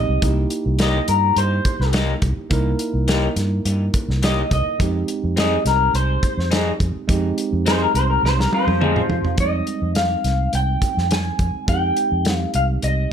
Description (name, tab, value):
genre	straight-eighth soul blues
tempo	105 BPM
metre	4/4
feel	straight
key	F minor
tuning	A4 = 440 Hz
part	electric guitar through a small old amp	melody	0.0-13.1 s	F4 to Ab5	-21 LUFS	left 2 dB	lush chorus
part	bright tine electric piano	accompaniment	0.0-13.1 s	G3 to Bb4	-27 LUFS	right 5 dB	none
part	vintage muted fingered electric bass	bass	0.0-13.1 s	C2 to G2	-21 LUFS	equal	none
part	warm soul drum kit	drums	0.2-13.0 s	hi-hat, kick drum, snare drum, toms	-22 LUFS	equal	none
part	electric guitar through a small old amp	stabs	0.8-9.0 s	E3 to Ab4	-26 LUFS	left 3 dB	tape echo
room	light reverb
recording	none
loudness	-17 LUFS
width	side -8 dB against mid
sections	0.0-9.4 A section; 9.4-13.1 B section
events	clean electric guitar solo 0.0-9.4; drum fill 8.2-9.4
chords	0.2 C7#9; 4.8 Fm7